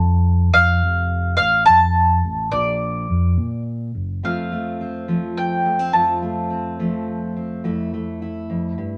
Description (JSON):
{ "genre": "indie folk with a building arrangement", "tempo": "70 BPM (dotted quarters)", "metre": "6/8", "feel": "straight", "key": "unclear", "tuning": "A4 = 440 Hz", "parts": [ { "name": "mandolin", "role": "melody", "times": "0.0-7.3 s", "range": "D5 to A5", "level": "-20 LUFS", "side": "equal", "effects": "none" }, { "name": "fingered electric bass", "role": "bass", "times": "0.0-4.2 s", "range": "F1 to Bb2", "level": "-21 LUFS", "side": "equal", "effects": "none" }, { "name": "fingerpicked steel-string acoustic guitar", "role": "accompaniment", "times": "4.2-9.0 s", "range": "F2 to F4", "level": "-26 LUFS", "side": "equal", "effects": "none" } ], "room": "moderate club ambience, RT60 0.5 s", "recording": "none", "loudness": "-20 LUFS", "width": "mono", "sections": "0.0-4.2 A section; 4.2-9.0 B section", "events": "none", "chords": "0.0 F; 2.5 Bb; 4.2 F; 7.6 Fmaj9" }